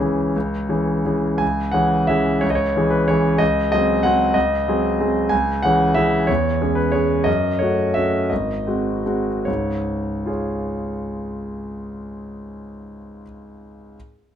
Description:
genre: classical, piano waltz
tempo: 135-198 BPM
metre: 3/4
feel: rubato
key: C# minor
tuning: A4 = 439 Hz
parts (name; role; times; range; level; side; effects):
- bright concert grand piano; solo; 0.0-14.0 s; G#1 to G#5; -18 LUFS; equal; none
room: moderate large studio reverb, RT60 1.2 s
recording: dark, warm production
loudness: -17 LUFS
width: side -9 dB against mid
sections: 0.0-1.4 A section; 1.4-9.5 B section; 9.5-11.8 C section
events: slowing down 6.8-9.5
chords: 0.0 C#m; 3.4 G#7/C#; 5.3 C#m; 6.3 C#m/E; 7.3 F#m; 8.3 G#7; 9.5 C#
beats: | 0.35 0.69 1.05 | 1.41 1.75 2.10 | 2.44 2.76 3.09 | 3.40 3.71 4.04 | 4.35 4.67 4.99 | 5.32 5.64 5.97 | 6.29 6.61 6.94 | 7.27 7.61 7.96 | 8.30 8.66 9.05 | 9.47 9.86 10.25 | 10.63 11.00 11.37

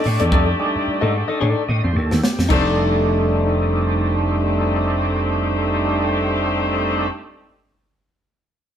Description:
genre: funk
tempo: 110 BPM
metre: 4/4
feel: swing 56% on 16ths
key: F mixolydian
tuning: A4 = 440 Hz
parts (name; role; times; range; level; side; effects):
- warm horn section; second line; 0.0-7.1 s; A3 to D5; -24 LUFS; left 2 dB; none
- clean electric guitar; accompaniment; 0.0-7.2 s; Eb4 to Eb5; -25 LUFS; left 4 dB; harmonic tremolo
- crisp fusion drum kit; drums; 0.0-2.6 s; crash cymbal, hi-hat, kick drum, snare drum; -21 LUFS; equal; none
- vintage slap bass; bass; 0.1-7.1 s; F1 to A2; -21 LUFS; equal; none
- overdriven tonewheel organ; stabs; 0.3-7.1 s; G3 to Eb5; -22 LUFS; right 2 dB; chorus vibrato, slow rotary speaker
room: moderate stone room reverb, RT60 0.9 s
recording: band playing live in one room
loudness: -17 LUFS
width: side -9 dB against mid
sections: 0.0-2.5 A section; 2.5-6.9 B section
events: drum fill 0.3-2.5; tonewheel organ fill 1.4-2.5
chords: 0.0 F13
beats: | 0.32 0.87 1.41 1.96 | 2.50 3.05 3.59 4.14 | 4.69 5.23 5.78 6.32

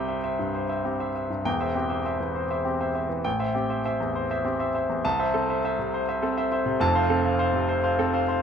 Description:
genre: classical, virtuoso piano study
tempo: 67 BPM (dotted quarters)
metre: 6/8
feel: rubato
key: unclear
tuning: A4 = 439 Hz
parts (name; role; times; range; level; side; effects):
- clear grand piano; solo; 0.0-8.4 s; E1 to A5; -23 LUFS; equal; none
room: moderate large studio reverb, RT60 0.9 s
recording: none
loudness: -23 LUFS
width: side -7 dB against mid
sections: 0.0-8.4 A section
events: none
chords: 0.0 C; 1.5 C/E; 3.2 Am7; 5.0 Am/C; 6.8 F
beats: 0.54 | 1.46 2.36 | 3.25 4.15 | 5.04 5.93 | 6.80 7.68

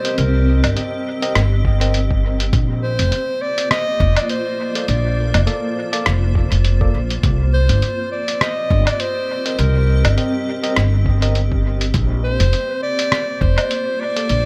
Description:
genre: ambient dub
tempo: 102 BPM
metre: 4/4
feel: swing 56% on 16ths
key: C minor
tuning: A4 = 439 Hz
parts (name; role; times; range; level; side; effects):
- clear clarinet; melody; 0.0-14.5 s; Bb4 to Eb5; -25 LUFS; equal; dub echo
- granular cloud pad; sustained chords; 0.0-14.5 s; Bb3 to Eb5; -29 LUFS; equal; built-in reverb, vintage 12-bit sampler grit
- tine electric piano; stabs; 0.0-14.3 s; Bb3 to Eb5; -29 LUFS; equal; overdrive, dub echo
- lo-fi sampler-style drum kit; drums; 0.0-14.4 s; hi-hat, rim click, woodblock; -24 LUFS; equal; dub echo
- upright bass; bass; 0.2-14.5 s; F1 to C2; -19 LUFS; equal; none
- electronic kick drum; drums; 1.6-13.5 s; none; -22 LUFS; equal; none
room: light reverb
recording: none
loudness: -18 LUFS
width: mono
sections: 0.0-14.5 A section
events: none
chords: 0.0 Cm7; 2.5 Bbmaj7; 7.2 Cm7; 11.9 Bb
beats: | 0.18 0.77 1.35 1.94 | 2.53 3.12 3.71 4.29 | 4.88 5.47 6.06 6.65 | 7.24 7.82 8.41 9.00 | 9.59 10.18 10.77 11.35 | 11.94 12.53 13.12 13.71 | 14.29

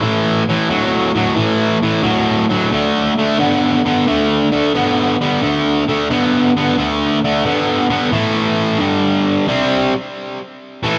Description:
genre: rock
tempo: 89 BPM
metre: 4/4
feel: swing 68% on 8ths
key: A minor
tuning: A4 = 440 Hz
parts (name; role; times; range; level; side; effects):
- distorted electric guitar; solo; 0.0-11.0 s; G2 to C4; -16 LUFS; equal; distortion, digital delay
room: moderate studio reverb, RT60 0.6 s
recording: band playing live in one room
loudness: -16 LUFS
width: mono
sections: 0.0-8.1 A section; 8.1-11.0 B section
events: none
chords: 0.0 A5; 2.7 D5; 8.1 A5; 8.8 G5; 9.5 Am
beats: | 0.02 0.69 1.36 2.04 | 2.71 3.39 4.06 4.74 | 5.41 6.09 6.76 7.44 | 8.12 8.80 9.48 10.16 | 10.84

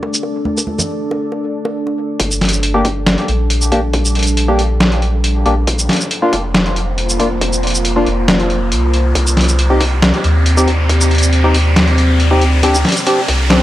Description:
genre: deep dubstep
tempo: 138 BPM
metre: 4/4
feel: half-time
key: G minor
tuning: A4 = 437 Hz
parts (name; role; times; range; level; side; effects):
- deep dark ambient pad; sustained chords; 0.0-13.6 s; G3 to D5; -21 LUFS; equal; chorus, built-in reverb
- bongos and congas; percussion; 0.0-2.0 s; none; -23 LUFS; right 1 dB; dub echo
- trip hop sampler-style drum kit; drums; 0.1-13.6 s; hi-hat, shaker, snare drum; -16 LUFS; equal; none
- soft dub sub bass; bass; 2.2-13.6 s; F1 to Eb2; -14 LUFS; equal; none
- electronic kick drum; drums; 2.2-13.4 s; none; -23 LUFS; equal; high-pass filter on kick, high-pass filter on room
- riser; sound effects; 4.8-13.6 s; none; -23 LUFS; equal; none
- percussive organ stab; stabs; 2.7-13.6 s; Bb3 to G4; -18 LUFS; left 1 dB; lush chorus, dub echo
room: light reverb, digital ambience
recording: dry, gritty hardware recording, cassette tape, low-pass filter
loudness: -12 LUFS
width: side -14 dB against mid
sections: 0.0-2.2 A section; 2.2-13.6 B section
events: filter sweep 0.0-2.2; build-up 2.2-13.6; riser 4.8-13.6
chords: 0.0 D5; 2.2 Gm; 5.7 Bb; 9.2 Cm; 12.6 D5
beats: 0.02 | 0.46 0.89 1.33 1.76 | 2.20 2.63 3.07 3.50 | 3.94 4.37 4.81 5.24 | 5.68 6.11 6.55 6.98 | 7.42 7.85 8.29 8.72 | 9.15 9.59 10.02 10.46 | 10.89 11.33 11.76 12.20 | 12.63 13.07 13.50

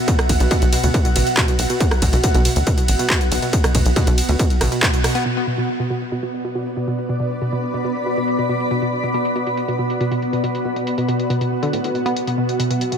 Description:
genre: driving peak-time techno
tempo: 139 BPM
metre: 4/4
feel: straight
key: B minor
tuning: A4 = 440 Hz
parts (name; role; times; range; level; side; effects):
- granular cloud pad; texture; 0.0-13.0 s; B3 to B5; -22 LUFS; equal; built-in reverb, sidechain pumping
- analog pluck; riff; 0.1-13.0 s; A2 to B3; -23 LUFS; equal; chorus, sidechain pumping, ping-pong delay
- electronic kick drum; drums; 0.1-4.9 s; none; -18 LUFS; equal; overdrive
- techno drum kit; drums; 0.1-13.0 s; handclaps, hi-hat, ride cymbal, rim click; -23 LUFS; equal; overdrive, low-pass filter on hats, low-pass filter on cymbals, low-pass filter on snare
- tight sequencer bass; bass; 0.3-4.7 s; A1 to D2; -18 LUFS; equal; sidechain pumping
room: light reverb, digital ambience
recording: none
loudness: -17 LUFS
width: side -7 dB against mid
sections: 0.0-5.3 A section; 5.3-13.0 B section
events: drop 0.0-5.3; band accent 4.8; filter sweep on drum 5.3-13.0; filter sweep on synth arpeggio sound 5.3-13.0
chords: 0.0 B5; 5.3 Bm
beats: | 0.08 0.51 0.94 1.37 | 1.80 2.24 2.67 3.10 | 3.53 3.96 4.39 4.83 | 5.26 5.69 6.12 6.55 | 6.98 7.42 7.85 8.28 | 8.71 9.14 9.57 10.01 | 10.44 10.87 11.30 11.73 | 12.16 12.60

